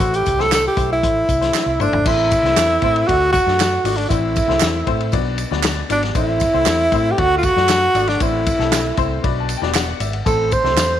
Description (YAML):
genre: uptempo 1960s-style soul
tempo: 117 BPM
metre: 4/4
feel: straight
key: A dorian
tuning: A4 = 440 Hz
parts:
  - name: breathy tenor saxophone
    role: melody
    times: 0.0-11.0 s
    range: D4 to C5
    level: -17 LUFS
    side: equal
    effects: none
  - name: clear upright piano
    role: accompaniment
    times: 0.0-11.0 s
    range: A2 to C6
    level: -24 LUFS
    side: left 10 dB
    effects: none
  - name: vintage muted fingered electric bass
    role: bass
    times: 0.0-11.0 s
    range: E1 to A2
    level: -23 LUFS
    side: right 1 dB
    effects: none
  - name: warm soul drum kit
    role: drums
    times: 0.0-10.9 s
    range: crash cymbal, hi-hat, kick drum, ride cymbal, snare drum, toms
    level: -22 LUFS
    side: left 2 dB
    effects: none
  - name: tambourine and handclaps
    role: percussion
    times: 0.0-10.9 s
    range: none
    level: -26 LUFS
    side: right 14 dB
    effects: none
  - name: vibraphone with soft mallets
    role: second line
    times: 1.8-11.0 s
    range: D5 to C6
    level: -27 LUFS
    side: right 10 dB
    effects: none
room: light reverb, small room ambience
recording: 1960s-style stereo with parts hard left and right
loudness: -15 LUFS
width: side -10 dB against mid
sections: 0.0-2.1 A section; 2.1-11.0 B section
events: tenor saxophone solo 0.0-2.1; drum fill 1.5-2.1; upright piano fill 8.7-10.3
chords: 0.0 Am; 3.1 D; 4.1 Am; 5.1 Bm; 6.2 Am; 7.2 D; 8.2 Am; 9.2 Bm; 10.3 Am